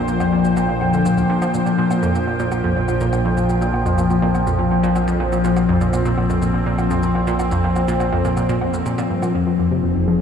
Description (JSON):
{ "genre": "ambient, sequencer-driven space music", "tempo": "123 BPM", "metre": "4/4", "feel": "straight", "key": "unclear", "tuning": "A4 = 445 Hz", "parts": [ { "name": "phased analog pad", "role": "sustained chords", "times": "0.0-10.2 s", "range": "Bb2 to G5", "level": "-18 LUFS", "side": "left 2 dB", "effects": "phaser, chorus" }, { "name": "analog pluck", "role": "riff", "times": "0.0-10.1 s", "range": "D2 to F3", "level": "-21 LUFS", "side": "right 2 dB", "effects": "chorus, tape echo" }, { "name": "round analog bass", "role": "bass", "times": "0.0-10.2 s", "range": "F1 to Bb1", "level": "-27 LUFS", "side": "right 1 dB", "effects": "none" }, { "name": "shaker and woodblock", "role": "percussion", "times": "0.1-9.3 s", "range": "none", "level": "-34 LUFS", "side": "right 1 dB", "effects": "tape echo" } ], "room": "wet huge ambient reverb, RT60 7.6 s", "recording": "played on a big sound system in a bare room, cassette tape, large studio reverb", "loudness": "-16 LUFS", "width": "side -7 dB against mid", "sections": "0.0-9.3 A section", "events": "none", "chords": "0.0 Bb6; 9.3 Fm7" }